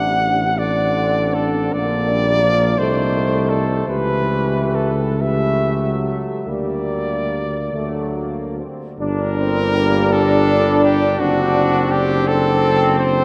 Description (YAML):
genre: classical, hymn-like piece for brass band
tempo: 43-59 BPM (dotted quarters)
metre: 6/8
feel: rubato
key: G minor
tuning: A4 = 439 Hz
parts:
  - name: mellow cornet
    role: melody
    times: 0.0-13.2 s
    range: F#4 to F#5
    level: -23 LUFS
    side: equal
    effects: none
  - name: mellow French horn section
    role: second line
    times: 0.0-13.2 s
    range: D4 to A4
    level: -27 LUFS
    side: equal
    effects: none
  - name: bright trombone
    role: accompaniment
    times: 0.0-13.2 s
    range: C3 to C4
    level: -28 LUFS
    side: equal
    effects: none
  - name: clear trombone section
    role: accompaniment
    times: 0.0-13.2 s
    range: A3 to D4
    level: -27 LUFS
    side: equal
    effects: none
  - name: dark tuba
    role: bass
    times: 0.0-13.2 s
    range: F#1 to D2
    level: -23 LUFS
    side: equal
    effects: none
room: wet cathedral reverb, RT60 5.1 s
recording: none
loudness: -18 LUFS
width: mono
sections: 0.0-9.0 A section; 9.0-13.2 B section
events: none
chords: 0.0 D7/A; 1.7 Gm/Bb; 2.8 Adim/C; 3.9 A7/C#; 6.5 Gm/D; 7.7 D; 9.0 Gm; 11.2 D7/F#